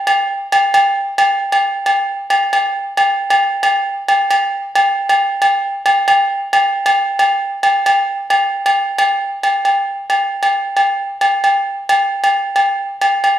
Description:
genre	highlife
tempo	134 BPM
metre	4/4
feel	straight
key	none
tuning	none
part	agogo bells	percussion	0.1-13.4 s	none	-13 LUFS	equal	none
room	light reverb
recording	band playing live in one room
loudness	-13 LUFS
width	side -11 dB against mid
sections	0.0-9.4 A section; 9.4-13.4 B section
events	none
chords	none

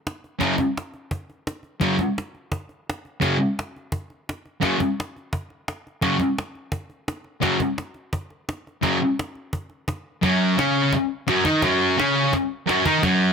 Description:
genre	garage rock duo or trio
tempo	171 BPM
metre	4/4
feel	straight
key	unclear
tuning	A4 = 440 Hz
part	cajon	drums	0.1-13.1 s	none	-29 LUFS	equal	none
part	thick fuzz guitar	riff	0.4-13.3 s	F#2 to D#4	-19 LUFS	equal	distortion
room	light reverb, studio reverb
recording	none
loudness	-21 LUFS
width	side -6 dB against mid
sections	0.0-10.2 A section; 10.2-13.3 B section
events	none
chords	0.0 F#5

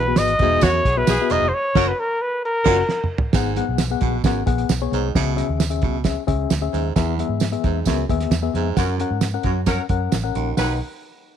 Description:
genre	uptempo 1960s-style soul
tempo	132 BPM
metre	4/4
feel	straight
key	unclear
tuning	A4 = 437 Hz
part	mellow trumpet	melody	0.0-3.1 s	A#4 to D#5	-20 LUFS	equal	none
part	mellow reed electric piano	accompaniment	0.0-10.8 s	B1 to F#5	-25 LUFS	left 14 dB	fast tremolo
part	breathy baritone saxophone	riff	0.0-10.8 s	D#2 to B2	-27 LUFS	right 14 dB	none
part	vintage muted fingered electric bass	bass	0.0-10.8 s	E1 to G#2	-24 LUFS	equal	none
part	cloth-damped thuddy drum kit	drums	0.2-10.7 s	crash cymbal, hi-hat, kick drum, snare drum, toms	-21 LUFS	right 3 dB	none
part	tambourine	percussion	0.2-10.8 s	none	-35 LUFS	right 15 dB	none
part	congas	percussion	0.4-10.8 s	none	-36 LUFS	right 10 dB	none
part	clear saxophone section	second line	0.6-2.8, 8.8-10.7 s	B2 to B4	-26 LUFS	left 1 dB	none
room	light reverb, small room ambience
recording	1960s-style stereo with parts hard left and right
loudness	-18 LUFS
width	side -9 dB against mid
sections	0.0-3.3 A section; 3.3-10.6 B section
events	band accent 1.5-3.3, 8.8-10.6; drum fill 2.9-3.3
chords	0.0 Eadd9; 1.5 F#; 3.3 G#m7; 5.1 C#m; 7.0 E; 8.8 F#; 10.6 B

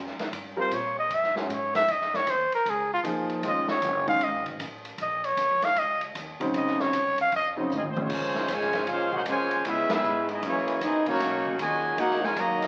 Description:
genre	jazz, big band swing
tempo	154 BPM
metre	4/4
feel	swing 65% on 8ths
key	Bb minor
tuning	A4 = 440 Hz
part	upright bass	bass	0.0-12.7 s	F1 to Bb2	-45 LUFS	equal	none
part	swinging big-band drum kit	drums	0.1-12.7 s	crash cymbal, hi-hat, kick drum, ride cymbal, snare drum, toms	-38 LUFS	equal	none
part	mellow trumpet	melody	0.6-7.5 s	F4 to F5	-27 LUFS	equal	none
part	clear grand piano	accompaniment	0.6-7.7 s	Db3 to Db5	-33 LUFS	equal	none
part	bright trumpet section	melody	7.7-12.7 s	Ab3 to A#5	-30 LUFS	equal	none
part	mellow trombone section	second line	7.7-12.7 s	A#2 to Gb4	-31 LUFS	equal	none
part	bright saxophone section	sustained chords	8.1-12.7 s	Bb2 to Gb4	-39 LUFS	equal	none
room	moderate large studio reverb, RT60 1.4 s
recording	very old 78 rpm record, vinyl crackle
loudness	-27 LUFS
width	mono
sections	0.0-8.1 A section; 8.1-12.7 B section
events	trumpet solo 0.0-8.1; drum fill 7.7-8.1; band accent 9.8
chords	0.3 Eb13/G (rootless); 1.1 Gbsus2; 1.9 Fm7; 3.4 F7alt; 5.0 Bbm9; 9.6 Dbm7; 10.4 Gb9; 11.2 Bmaj9

